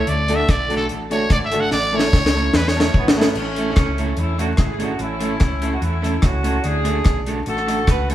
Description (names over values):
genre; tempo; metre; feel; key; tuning
ska; 146 BPM; 4/4; straight; A major; A4 = 440 Hz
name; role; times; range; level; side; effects
growling trumpet; melody; 0.0-3.1 s; A4 to F#5; -21 LUFS; right 1 dB; none
warm upright piano; stabs; 0.0-3.3 s; A3 to A4; -25 LUFS; left 1 dB; none
hollow-body short-scale fingered electric bass; bass; 0.1-8.1 s; G#1 to E2; -24 LUFS; equal; none
deep reggae drum kit; drums; 0.1-8.1 s; crash cymbal, hi-hat, kick drum, rim click, snare drum; -19 LUFS; equal; dub echo
electric guitar at the edge of break-up; accompaniment; 0.3-8.1 s; A3 to A4; -25 LUFS; right 2 dB; dub echo
mellow horn section; melody; 3.0-8.1 s; E3 to B4; -24 LUFS; right 1 dB; none
room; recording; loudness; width
wet stone room reverb, RT60 1.0 s; band playing live in one room, vinyl crackle; -16 LUFS; side -12 dB against mid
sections
0.0-3.4 A section; 3.4-8.1 B section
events
trumpet solo 0.0-3.4; drum fill 1.7-3.4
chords
0.1 D; 1.7 A; 6.6 D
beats
| 0.08 0.49 0.90 1.31 | 1.72 2.13 2.54 2.95 | 3.36 3.77 4.18 4.59 | 5.00 5.42 5.83 6.24 | 6.65 7.06 7.47 7.88